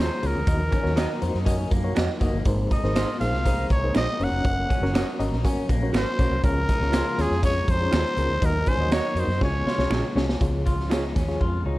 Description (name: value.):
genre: uptempo 1960s-style soul.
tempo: 121 BPM.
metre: 4/4.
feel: straight.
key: Db major.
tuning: A4 = 440 Hz.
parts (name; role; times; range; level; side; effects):
growling trumpet; melody; 0.0-10.1 s; Ab4 to Gb5; -27 LUFS; equal; plate reverb.
reed electric piano; accompaniment; 0.0-11.8 s; Ab2 to Eb5; -30 LUFS; left 2 dB; overdrive, fast tremolo, plate reverb.
mellow tonewheel organ; sustained chords; 0.0-11.8 s; F3 to Eb4; -35 LUFS; right 1 dB; fast rotary speaker, chorus vibrato.
electric guitar through a small old amp; riff; 0.0-11.8 s; Bb3 to F4; -35 LUFS; left 4 dB; wide subtle chorus.
electric guitar through a small old amp; stabs; 0.0-11.0 s; Eb4 to Eb5; -34 LUFS; right 5 dB; spring reverb, plate reverb.
vintage muted fingered electric bass; bass; 0.0-11.8 s; F1 to Gb2; -26 LUFS; equal; none.
raw garage drum kit; drums; 0.2-11.5 s; hi-hat, kick drum, snare drum; -25 LUFS; equal; none.
finger snaps; percussion; 1.0-11.0 s; none; -36 LUFS; right 4 dB; none.
room: light reverb.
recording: dark, warm production.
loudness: -21 LUFS.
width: side -18 dB against mid.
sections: 0.0-10.4 A section; 10.4-11.8 B section.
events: drum fill 9.4-10.4, 11.4-11.8.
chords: 0.5 Ebm; 2.5 Abadd9; 4.2 Gb; 6.4 Db; 8.4 Ebm; 9.4 Db.